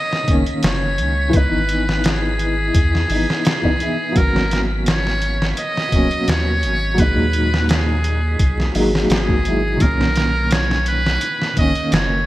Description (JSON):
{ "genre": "trip hop", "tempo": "85 BPM", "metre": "4/4", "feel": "straight", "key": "unclear", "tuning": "A4 = 440 Hz", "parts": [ { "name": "trumpet with metal mute", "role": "melody", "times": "0.0-12.3 s", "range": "G#4 to D#5", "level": "-22 LUFS", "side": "right 1 dB", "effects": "none" }, { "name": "dark upright piano", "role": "accompaniment", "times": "0.0-12.3 s", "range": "A#2 to E4", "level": "-21 LUFS", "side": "left 1 dB", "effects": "tremolo" }, { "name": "wind-like tuned noise texture", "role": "texture", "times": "0.0-12.3 s", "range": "B6", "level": "-35 LUFS", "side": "right 4 dB", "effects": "built-in reverb" }, { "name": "trip hop sampler-style drum kit", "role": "drums", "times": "0.1-12.1 s", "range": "hi-hat, kick drum, snare drum", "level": "-20 LUFS", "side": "equal", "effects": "studio ambience, gated reverb" }, { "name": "soft dub sub bass", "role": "bass", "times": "0.3-12.3 s", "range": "D#1 to E2", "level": "-21 LUFS", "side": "equal", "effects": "none" } ], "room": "light reverb", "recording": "bright 1980s-style digital production, vinyl crackle", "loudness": "-15 LUFS", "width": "side -16 dB against mid", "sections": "0.0-12.3 A section", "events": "none", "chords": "0.0 Bmaj9; 1.3 C#m9 (rootless); 4.2 G#m11; 7.0 Emaj9#11/G# (rootless); 9.8 Bmaj9" }